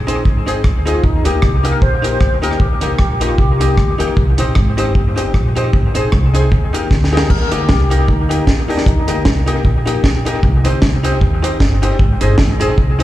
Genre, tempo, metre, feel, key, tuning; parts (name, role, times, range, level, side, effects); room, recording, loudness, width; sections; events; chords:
ska; 153 BPM; 4/4; swing 56% on 8ths; Eb major; A4 = 445 Hz
upright bass; bass; 0.0-13.0 s; G1 to Eb2; -16 LUFS; equal
archtop guitar, miked and amplified; accompaniment; 0.1-13.0 s; Eb4 to Eb5; -24 LUFS; right 3 dB; dub echo, slapback echo
clear upright piano; stabs; 0.1-13.0 s; Bb3 to Ab4; -21 LUFS; left 5 dB; dub echo, slapback echo
deep reggae drum kit; drums; 0.1-13.0 s; crash cymbal, hi-hat, kick drum, rim click, snare drum; -16 LUFS; equal; dub echo
tonewheel organ; melody; 0.9-4.0, 7.1-9.2 s; D4 to C5; -22 LUFS; left 1 dB; overdrive, chorus vibrato, slow rotary speaker, dub echo, slapback echo
little or no reverb; live gig heard through the venue's PA, club reverb; -12 LUFS; side -14 dB against mid
0.0-7.3 A section; 7.3-13.0 A section
drum fill 6.9-7.3
0.0 Ab; 1.0 Eb; 4.2 Cm; 5.7 Ab; 6.5 Eb; 10.4 Cm; 12.0 Ab